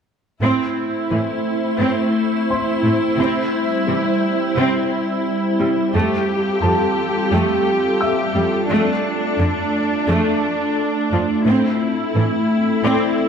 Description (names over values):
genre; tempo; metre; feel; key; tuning
cinematic; 87 BPM; 4/4; straight; A minor; A4 = 440 Hz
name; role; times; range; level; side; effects
rich symphonic viola section; accompaniment; 0.4-13.3 s; D3 to G4; -20 LUFS; right 1 dB; none
soft additive organ-like pad; sustained chords; 0.7-13.3 s; G3 to C5; -20 LUFS; left 1 dB; ensemble chorus, built-in reverb
rich symphonic cello section; bass; 0.4-12.9 s; F2 to C3; -23 LUFS; right 1 dB; none
dark concert grand piano; texture; 0.4-13.3 s; A4 to E6; -28 LUFS; left 1 dB; digital delay
room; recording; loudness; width
moderate scoring stage reverb, RT60 1.9 s; none; -16 LUFS; side -7 dB against mid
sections
0.4-13.3 A section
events
build-up 0.4-13.3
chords
0.4 Am; 3.2 C; 5.9 Fadd9; 8.7 Dm/F; 11.5 Am